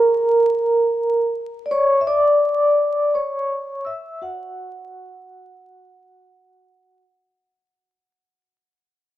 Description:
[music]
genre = hip hop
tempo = free time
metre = none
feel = none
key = unclear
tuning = A4 = 440 Hz
[part]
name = vibraphone with soft mallets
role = accompaniment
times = 0.0-7.0 s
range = F#4 to E6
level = -17 LUFS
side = equal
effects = none
[sound]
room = wet plate reverb, RT60 3.3 s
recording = dark, warm production, vinyl crackle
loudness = -16 LUFS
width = side -13 dB against mid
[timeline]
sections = 0.0-7.4 A section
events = fade-out 0.0-7.4; vibraphone solo 0.0-7.4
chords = 0.0 N.C.; 1.3 Dmaj9; 4.6 N.C.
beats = free time

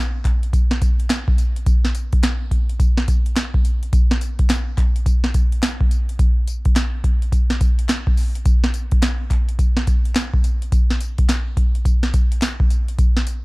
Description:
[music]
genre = R&B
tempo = 106 BPM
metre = 4/4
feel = swing 63% on 16ths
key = none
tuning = none
[part]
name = booming analog drum machine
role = drums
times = 0.2-13.4 s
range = hi-hat, kick drum, snare drum, tambourine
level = -16 LUFS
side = equal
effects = overdrive
[part]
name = group handclap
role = percussion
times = 0.2-12.6 s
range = none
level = -36 LUFS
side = left 2 dB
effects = none
[sound]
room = little or no reverb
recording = dark, warm production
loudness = -16 LUFS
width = side -24 dB against mid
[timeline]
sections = 0.0-13.4 A section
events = none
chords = none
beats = 0.53 1.10 | 1.67 2.23 2.80 3.36 | 3.93 4.50 5.06 5.63 | 6.19 6.76 7.33 7.89 | 8.46 9.02 9.59 10.16 | 10.72 11.29 11.85 12.42 | 12.99

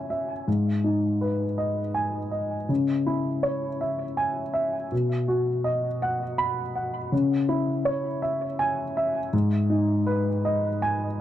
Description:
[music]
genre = neoclassical minimalist piano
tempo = 54 BPM (dotted quarters)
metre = 6/8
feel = rubato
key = C# minor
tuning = A4 = 439 Hz
[part]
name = warm baby grand piano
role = solo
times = 0.0-11.2 s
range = G#2 to B5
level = -23 LUFS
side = equal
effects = tape echo
[sound]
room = small room reverb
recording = dry, close 1970s-style studio recording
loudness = -23 LUFS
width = side -12 dB against mid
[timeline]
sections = 0.0-11.2 A section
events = none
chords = 0.5 G#m; 2.7 C#m; 4.9 B; 7.1 C#m; 9.3 G#m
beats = | 0.47 1.58 | 2.70 3.81 | 4.92 6.02 | 7.12 8.22 | 9.33 10.44

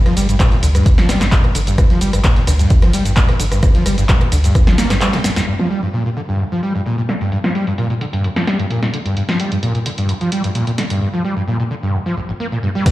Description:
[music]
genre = acid house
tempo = 130 BPM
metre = 4/4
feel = straight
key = G minor pentatonic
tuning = A4 = 440 Hz
[part]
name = overdriven acid bass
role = riff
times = 0.1-12.9 s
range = G1 to Bb3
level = -18 LUFS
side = equal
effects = distortion, ensemble chorus, cassette tape, sidechain pumping, ping-pong delay
[part]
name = punchy analog drum machine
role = drums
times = 0.1-12.9 s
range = crash cymbal, handclaps, hi-hat, ride cymbal, rim click, shaker, snare drum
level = -21 LUFS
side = equal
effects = low-pass filter on hats, low-pass filter on cymbals, low-pass filter on perc, low-pass filter on snare, low-pass filter on room
[part]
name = warm soul drum kit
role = drums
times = 0.1-5.4, 12.9 s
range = ride cymbal, snare drum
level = -34 LUFS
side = left 2 dB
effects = none
[part]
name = warm sub bass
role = bass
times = 0.2-5.0 s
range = G1 to D2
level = -16 LUFS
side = equal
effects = tube saturation, sidechain pumping
[part]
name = electronic kick drum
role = drums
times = 0.4-4.6, 12.9 s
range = none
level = -12 LUFS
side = equal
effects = overdrive
[sound]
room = light reverb, small room ambience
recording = played on a big sound system in a bare room, large studio reverb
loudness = -14 LUFS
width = side -16 dB against mid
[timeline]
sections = 0.0-5.5 A section; 5.5-12.9 B section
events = drop 0.0-5.5; break 5.0-5.5; drum fill 5.1-5.5; band accent 5.4; filter sweep on drum 5.5-12.9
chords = 0.0 Gm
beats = 0.40 0.86 1.32 | 1.78 2.24 2.71 3.17 | 3.63 4.09 4.55 5.01 | 5.47 5.94 6.40 6.86 | 7.32 7.78 8.24 8.71 | 9.17 9.63 10.09 10.55 | 11.01 11.47 11.94 12.40 | 12.86

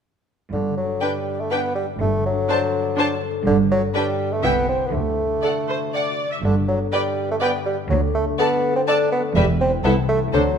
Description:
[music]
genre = cinematic, playful, whimsical film cue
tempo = 123 BPM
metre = 3/4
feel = straight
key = G major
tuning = A4 = 439 Hz
[part]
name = warm bassoon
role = accompaniment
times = 0.5-10.6 s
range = D3 to D4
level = -22 LUFS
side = right 2 dB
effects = none
[part]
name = concert harp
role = arpeggios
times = 0.5-10.6 s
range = G2 to D5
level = -26 LUFS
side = left 8 dB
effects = none
[part]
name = clear studio cello section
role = bass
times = 0.5-10.6 s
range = C2 to D3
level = -24 LUFS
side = right 3 dB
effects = none
[part]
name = warm studio double bass section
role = bass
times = 0.5-10.6 s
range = E1 to D2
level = -25 LUFS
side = right 3 dB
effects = none
[part]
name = warm studio violin section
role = melody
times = 1.0-10.4 s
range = C5 to A5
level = -29 LUFS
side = left 2 dB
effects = none
[part]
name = rich studio violin section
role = second line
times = 1.0-10.4 s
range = A4 to E5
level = -28 LUFS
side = left 2 dB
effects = none
[part]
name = rich studio viola section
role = accompaniment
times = 1.0-10.4 s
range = D4 to E5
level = -28 LUFS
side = right 1 dB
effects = none
[sound]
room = moderate recital hall reverb, RT60 1.7 s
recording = minimal, uncompressed stereo recording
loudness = -18 LUFS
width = side -7 dB against mid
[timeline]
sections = 0.5-10.6 A section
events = none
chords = 0.5 G; 2.0 D7/G; 3.5 G; 4.4 C; 4.9 D; 6.4 G; 7.9 D5; 9.4 Em; 9.8 Am/C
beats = | 0.52 1.01 1.51 | 2.00 2.49 2.98 | 3.46 3.94 4.43 | 4.93 5.43 5.93 | 6.43 6.92 7.41 | 7.90 8.39 8.88 | 9.36 9.85 10.34

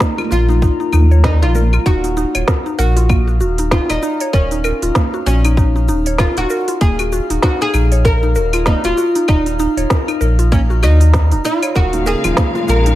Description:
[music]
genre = organic downtempo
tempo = 97 BPM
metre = 4/4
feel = swing 58% on 16ths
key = Eb minor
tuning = A4 = 435 Hz
[part]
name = oud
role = melody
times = 0.0-13.0 s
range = Db4 to Bb4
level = -20 LUFS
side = equal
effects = digital delay
[part]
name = mallet-like synth pluck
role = arpeggios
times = 0.0-13.0 s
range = Bb3 to Db5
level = -21 LUFS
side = equal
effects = chorus, tape echo
[part]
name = electronic kick drum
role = drums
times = 0.0-12.5 s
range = none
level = -15 LUFS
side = equal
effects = overdrive
[part]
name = organic electronic drum kit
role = drums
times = 0.0-13.0 s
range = claves, hi-hat, shaker, snare drum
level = -21 LUFS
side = equal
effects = overdrive
[part]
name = drifting glass-harmonics texture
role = texture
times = 0.0-13.0 s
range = Bb3 to F5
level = -28 LUFS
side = equal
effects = chorus, built-in reverb
[part]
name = congas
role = percussion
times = 0.2-1.7, 11.9-12.7 s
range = none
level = -25 LUFS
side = right 3 dB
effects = none
[part]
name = warm sub bass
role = bass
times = 0.3-13.0 s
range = Eb1 to Eb2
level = -14 LUFS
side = equal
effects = tube saturation, sidechain pumping
[part]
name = clear studio string section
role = sustained chords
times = 11.8-13.0 s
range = Db3 to F5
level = -22 LUFS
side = left 1 dB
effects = sidechain pumping
[sound]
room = digital ambience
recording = none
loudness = -12 LUFS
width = side -14 dB against mid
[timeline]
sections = 0.0-1.9 A section; 1.9-13.0 B section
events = filter sweep on synth pluck 0.0-1.9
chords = 0.0 N.C.; 1.9 Ebm; 11.8 Db/Eb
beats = 0.01 0.62 1.24 | 1.86 2.48 3.10 3.72 | 4.33 4.95 5.57 6.19 | 6.81 7.43 8.05 8.66 | 9.28 9.90 10.52 11.14 | 11.76 12.38

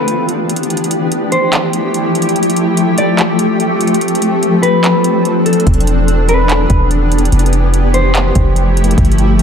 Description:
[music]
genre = hip hop, atmospheric cloud-rap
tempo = 145 BPM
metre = 4/4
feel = half-time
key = unclear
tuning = A4 = 439 Hz
[part]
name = mellow electric guitar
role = melody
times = 0.0-8.9 s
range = A4 to D5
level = -18 LUFS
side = left 1 dB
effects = lush chorus, low-pass filter, ping-pong delay
[part]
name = shimmering ambient pad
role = sustained chords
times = 0.0-9.4 s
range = E3 to A4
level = -13 LUFS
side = left 1 dB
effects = chorus, built-in reverb, sidechain pumping
[part]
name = smooth R&B drum kit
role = drums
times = 0.1-9.4 s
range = handclaps, hi-hat, kick drum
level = -17 LUFS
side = equal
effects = none
[part]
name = warm 808-style bass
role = bass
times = 5.7-9.4 s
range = E1 to G1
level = -12 LUFS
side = equal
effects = none
[sound]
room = light reverb, digital ambience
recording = none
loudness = -10 LUFS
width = side -7 dB against mid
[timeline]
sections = 0.0-9.4 A section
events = break 0.0-5.7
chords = 0.0 Em7; 0.7 Fmaj9; 2.4 G9sus4; 4.0 Dm7; 5.7 Em7; 7.3 Fmaj9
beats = 0.29 | 0.70 1.12 1.53 1.94 | 2.36 2.77 3.19 3.60 | 4.01 4.43 4.84 5.25 | 5.67 6.08 6.50 6.91 | 7.32 7.74 8.15 8.56 | 8.98 9.39

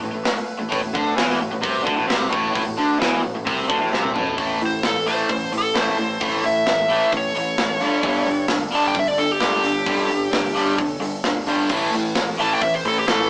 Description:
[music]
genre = hard rock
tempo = 131 BPM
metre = 4/4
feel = straight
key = unclear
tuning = A4 = 441 Hz
[part]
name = warm analog pad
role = sustained chords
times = 0.0-13.3 s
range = G3 to B4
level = -35 LUFS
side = equal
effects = none
[part]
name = cranked stack guitar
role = riff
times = 0.0-13.3 s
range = G2 to A3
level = -28 LUFS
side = equal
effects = overdrive, phaser
[part]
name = distorted electric guitar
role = riff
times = 0.0-13.3 s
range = G2 to A3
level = -27 LUFS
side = equal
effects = overdrive
[part]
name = modern bright fingered electric bass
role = bass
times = 0.0-13.3 s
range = G1 to A2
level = -31 LUFS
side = equal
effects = none
[part]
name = tight metal drum kit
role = drums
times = 0.3-13.2 s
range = crash cymbal, hi-hat, kick drum, snare drum, toms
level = -28 LUFS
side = equal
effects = none
[part]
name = nasal lead guitar with a parked wah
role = melody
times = 4.7-13.3 s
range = G4 to A5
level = -24 LUFS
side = equal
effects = overdrive
[sound]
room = moderate small room ambience, RT60 0.5 s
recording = rough rehearsal-room recording, small speaker sound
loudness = -21 LUFS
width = mono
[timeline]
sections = 0.0-4.4 A section; 4.4-13.3 B section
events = drum fill 3.9-4.4; lead electric guitar solo 4.4-13.3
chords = 0.0 A5; 7.8 G5; 11.7 A5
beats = 0.26 | 0.72 1.18 1.63 2.09 | 2.55 3.00 3.46 3.92 | 4.38 4.83 5.29 5.75 | 6.21 6.67 7.12 7.58 | 8.04 8.50 8.96 9.41 | 9.87 10.33 10.79 11.24 | 11.70 12.16 12.62 13.08

